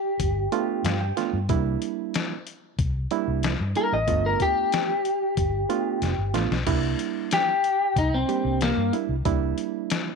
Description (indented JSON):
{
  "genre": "straight-eighth soul blues",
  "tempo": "93 BPM",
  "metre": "4/4",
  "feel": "straight",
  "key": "C mixolydian",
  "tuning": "A4 = 440 Hz",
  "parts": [
    { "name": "electric guitar through a small old amp", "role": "melody", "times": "0.0-8.9 s", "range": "Bb3 to Eb5", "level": "-24 LUFS", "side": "left 2 dB", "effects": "vibrato effect" },
    { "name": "vintage muted fingered electric bass", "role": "bass", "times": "0.2-9.5 s", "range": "F1 to G2", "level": "-27 LUFS", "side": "left 1 dB", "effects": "none" },
    { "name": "trip hop sampler-style drum kit", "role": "drums", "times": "0.2-10.1 s", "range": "crash cymbal, hi-hat, kick drum, snare drum", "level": "-28 LUFS", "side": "left 4 dB", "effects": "none" },
    { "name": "barky reed electric piano", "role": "accompaniment", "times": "0.5-10.1 s", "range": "G3 to G5", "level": "-27 LUFS", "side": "right 16 dB", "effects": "overdrive" }
  ],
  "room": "digital ambience",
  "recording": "1960s-style stereo",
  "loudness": "-22 LUFS",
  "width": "side -5 dB against mid",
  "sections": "0.0-6.7 A section; 6.7-10.2 B section",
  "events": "reed electric piano fill 0.5-1.5; drum fill 6.0-6.7; clean electric guitar solo 6.7-10.2",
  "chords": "0.0 G9; 1.5 C9; 4.1 G9; 6.7 C9"
}